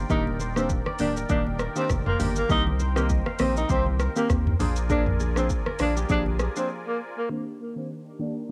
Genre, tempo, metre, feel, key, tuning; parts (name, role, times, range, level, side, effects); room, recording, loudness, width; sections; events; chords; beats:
afrobeats; 100 BPM; 4/4; swing 55% on 16ths; Eb major; A4 = 440 Hz
musette accordion; sustained chords; 0.0-8.5 s; Eb3 to Ab5; -42 LUFS; equal; low-pass filter, cassette tape
kora; riff; 0.0-7.8 s; G4 to F5; -39 LUFS; equal; cassette tape, tape echo
saturated sub bass; bass; 0.0-6.5 s; D1 to Eb2; -30 LUFS; equal
breathy tenor saxophone; melody; 0.1-8.3 s; Bb3 to Eb4; -32 LUFS; equal; low-pass filter
glassy wavetable pluck; accompaniment; 0.1-8.4 s; Eb3 to Ab4; -32 LUFS; equal; chorus, low-pass filter, cassette tape
afro-pop drum kit; drums; 0.1-6.7 s; hi-hat, kick drum, rim click, shaker, toms; -30 LUFS; equal; cassette tape
congas; percussion; 0.3-6.4 s; -38 LUFS; equal
light reverb, small room ambience; home recording on cassette; -25 LUFS; mono
0.0-7.3 A section; 7.3-8.5 B section
break 6.7-7.3; filter sweep 7.3-8.5
0.0 Ebmaj7; 2.5 Cm7; 4.6 Bb7; 7.3 Ebmaj7
| 0.10 0.70 1.30 1.90 | 2.50 3.10 3.70 4.30 | 4.90 5.50 6.10 6.70 | 7.30 7.90 8.50